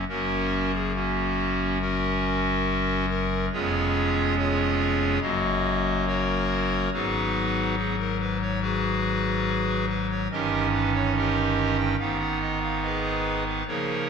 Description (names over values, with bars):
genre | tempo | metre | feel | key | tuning
classical, chorale-style piece for pipe organ | 71 BPM | 4/4 | straight | F# major | A4 = 442 Hz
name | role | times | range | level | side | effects
pipe organ, clarinet reed | solo | 0.0-14.1 s | E#1 to G5 | -23 LUFS | equal | none
room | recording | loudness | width
wet scoring stage reverb, RT60 1.6 s | none | -23 LUFS | side -6 dB against mid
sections
0.1-14.1 A section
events
none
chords
0.1 F#; 3.5 C#7/E#; 5.2 F#; 6.9 G#m7; 10.3 D#7/G; 12.0 G#m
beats
| 0.09 0.95 1.81 2.67 | 3.52 4.37 5.22 6.07 | 6.93 7.78 8.62 9.47 | 10.31 11.15 11.99 12.83 | 13.67